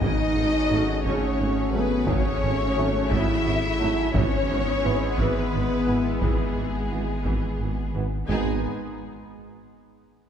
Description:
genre	cinematic, hybrid orchestral and electronic film score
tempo	58 BPM (dotted quarters)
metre	6/8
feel	straight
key	G# phrygian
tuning	A4 = 440 Hz
part	warm symphonic violin section	melody	0.0-8.7 s	G#4 to E5	-32 LUFS	left 6 dB	none
part	warm symphonic violin section	second line	0.0-8.7 s	G#4 to G#5	-33 LUFS	left 3 dB	none
part	rich symphonic viola section	accompaniment	0.0-8.7 s	C#3 to D#4	-34 LUFS	right 1 dB	none
part	chorused pulse-width pad	sustained chords	0.0-8.7 s	G#3 to G#4	-32 LUFS	equal	none
part	mellow French horn section	sustained chords	0.0-8.6 s	G#3 to E4	-31 LUFS	left 1 dB	none
part	dark symphonic cello section	bass	0.0-8.7 s	G#3 to E4	-32 LUFS	right 2 dB	none
part	dark tuba	bass	0.0-8.6 s	G#1	-33 LUFS	right 2 dB	none
part	rich symphonic double bass section	bass	0.0-8.7 s	G#1	-32 LUFS	right 3 dB	none
part	saturated sub bass	bass	0.0-8.7 s	G#1	-30 LUFS	equal	none
part	taiko ensemble	drums	0.0-9.6 s	none	-29 LUFS	equal	none
part	warm trombone section	sustained chords	0.7-8.6 s	D#3 to B3	-36 LUFS	right 3 dB	none
room	moderate concert hall reverb, RT60 2.3 s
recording	recorded in a church or concert hall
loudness	-22 LUFS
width	side -8 dB against mid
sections	0.0-8.3 A section; 8.3-10.3 B section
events	none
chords	0.0 F#madd9/G#; 4.1 E/G#; 8.3 G#m

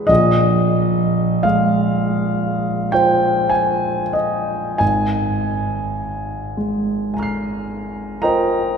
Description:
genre	classical, impressionist solo piano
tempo	30-45 BPM (dotted quarters)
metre	9/8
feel	rubato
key	unclear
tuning	A4 = 440 Hz
part	clear grand piano	solo	0.0-8.8 s	Ab1 to C7	-16 LUFS	equal	none
room	wet cathedral reverb, RT60 5.0 s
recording	recorded in a church or concert hall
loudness	-16 LUFS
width	side -6 dB against mid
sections	0.0-8.8 A section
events	none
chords	0.1 Bb9sus4; 4.8 Ab69

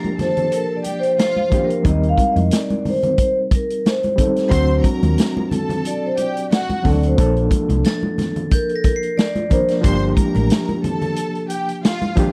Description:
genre	lush 1970s-style soul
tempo	90 BPM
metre	4/4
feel	swing 54% on 16ths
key	G minor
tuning	A4 = 441 Hz
part	rich studio string section	second line	0.0-12.3 s	F4 to C6	-30 LUFS	equal	none
part	overdriven reed electric piano	accompaniment	0.0-12.3 s	F3 to Bb4	-25 LUFS	equal	fast tremolo
part	vintage drum kit	drums	0.0-12.3 s	hi-hat, kick drum, snare drum	-20 LUFS	equal	none
part	congas	percussion	0.0-12.3 s	none	-28 LUFS	equal	none
part	glockenspiel with brass mallets	texture	0.0-2.2, 7.9-10.5 s	G6 to C7	-37 LUFS	equal	none
part	vibraphone with medium mallets	melody	0.2-10.0 s	A4 to F#5	-23 LUFS	equal	none
part	hollow-body short-scale fingered electric bass	bass	1.9-10.5 s	G1 to F2	-20 LUFS	equal	none
room	little or no reverb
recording	dry, close 1970s-style studio recording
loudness	-18 LUFS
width	mono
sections	0.0-12.3 A section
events	vibraphone solo 0.0-12.3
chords	0.0 Gm7; 1.9 Eb6; 4.5 D7; 7.2 Bbmaj7; 9.8 Gm7

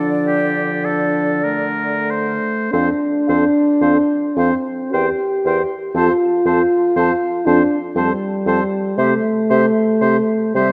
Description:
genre	classical, slow romantic movement for wind quintet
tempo	44-60 BPM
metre	3/4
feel	rubato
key	F major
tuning	A4 = 439 Hz
part	mellow concert flute	melody	0.0-10.7 s	D5 to A5	-30 LUFS	equal	none
part	clear oboe	second line	0.0-10.7 s	G4 to C5	-25 LUFS	equal	none
part	dark French horn	accompaniment	0.0-10.7 s	F3 to G4	-20 LUFS	equal	none
part	dark clarinet	accompaniment	0.0-10.7 s	D4 to Bb4	-30 LUFS	equal	none
part	dark bassoon	bass	0.0-10.7 s	E2 to D3	-24 LUFS	equal	none
room	moderate scoring stage reverb, RT60 2.0 s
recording	none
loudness	-17 LUFS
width	mono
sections	0.0-2.7 A section; 2.7-10.7 B section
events	none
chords	0.0 Dm; 2.7 F; 4.9 C7/E; 5.9 F; 9.0 C

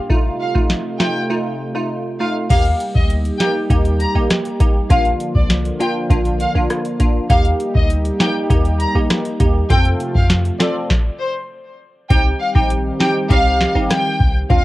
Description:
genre	dancehall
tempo	100 BPM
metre	4/4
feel	straight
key	unclear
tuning	A4 = 445 Hz
part	warm analog pad	sustained chords	0.0-14.6 s	C3 to G4	-24 LUFS	equal	chorus, sidechain pumping
part	wavetable chord stab	accompaniment	0.1-14.6 s	A3 to A4	-22 LUFS	right 1 dB	none
part	booming analog drum machine	drums	0.1-14.6 s	crash cymbal, hi-hat, kick drum, rim click, snare drum	-16 LUFS	equal	cassette tape
part	rich studio violin section	melody	0.4-14.6 s	C5 to Bb5	-22 LUFS	equal	none
part	clean 808-style bass	bass	2.5-14.6 s	G1 to F2	-18 LUFS	equal	none
room	light reverb, digital ambience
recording	home recording on cassette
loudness	-14 LUFS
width	side -17 dB against mid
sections	0.0-2.5 A section; 2.5-12.1 B section; 12.1-14.6 C section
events	break 1.3-2.5; stop 10.9-12.1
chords	0.1 F7; 2.5 Eb; 4.9 Bb; 7.3 Eb; 9.7 F; 12.1 Cm

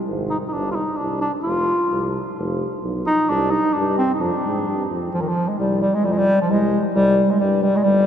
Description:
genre	balkan folk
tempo	131 BPM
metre	2/4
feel	straight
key	F dorian sharp4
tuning	A4 = 440 Hz
part	mellow tuba	bass	0.1-8.1 s	F1 to Ab2	-24 LUFS	right 1 dB	none
part	mellow bass clarinet	melody	0.3-8.1 s	Eb3 to F4	-19 LUFS	equal	none
room	wet cathedral reverb, RT60 5.8 s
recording	recorded in a church or concert hall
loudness	-18 LUFS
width	side -9 dB against mid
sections	0.0-5.1 A section; 5.1-8.1 B section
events	bass clarinet solo 0.0-5.1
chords	0.0 Ab5; 0.5 Ebmaj13/G; 1.5 F5; 3.3 C5; 4.2 Fm; 5.1 F5; 7.0 C5

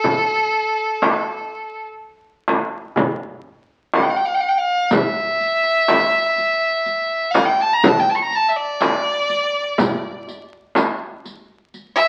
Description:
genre	Arabic maqam ensemble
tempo	123 BPM (eighths)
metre	10/8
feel	straight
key	unclear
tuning	A4 = 439 Hz
part	clear violin	melody	0.0-12.1 s	A4 to C#6	-20 LUFS	equal	none
part	darbuka	percussion	0.0-11.4 s	none	-24 LUFS	equal	none
part	frame drum	percussion	0.0-11.0 s	none	-23 LUFS	equal	none
part	riq	percussion	4.9-11.9 s	none	-29 LUFS	equal	none
room	wet studio reverb, RT60 0.9 s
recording	very old 78 rpm record, vinyl crackle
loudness	-19 LUFS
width	mono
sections	0.0-12.1 A section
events	none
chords	none

